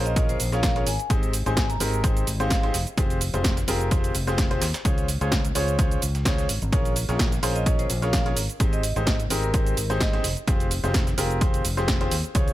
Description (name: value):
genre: piano house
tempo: 128 BPM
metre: 4/4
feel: swing 54% on 16ths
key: unclear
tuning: A4 = 441 Hz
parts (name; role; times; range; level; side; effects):
- clear grand piano; riff; 0.0-12.5 s; C4 to Db5; -28 LUFS; left 1 dB; sidechain pumping, digital delay
- fingered electric bass; bass; 0.0-12.5 s; F1 to Eb2; -27 LUFS; equal; tube saturation, sidechain pumping
- vibraphone with medium mallets; melody; 0.1-2.8, 7.6-10.3 s; Bb4 to Bb5; -32 LUFS; equal; digital delay
- punchy analog drum machine; drums; 0.1-12.5 s; hi-hat, shaker, snare drum; -29 LUFS; right 2 dB; overdrive
- breakbeat sampler-style drum kit; drums; 0.2-12.5 s; hi-hat, snare drum; -37 LUFS; right 1 dB; none
- electronic kick drum; drums; 0.2-12.5 s; none; -24 LUFS; equal; overdrive
room: little or no reverb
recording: none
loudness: -21 LUFS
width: side -15 dB against mid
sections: 0.0-12.5 A section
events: none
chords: 0.0 Bbm7; 0.9 Abmaj7; 2.7 Fmadd9; 4.9 Dbmaj7; 6.7 Bbm7; 8.4 Abmaj7; 10.2 Fmadd9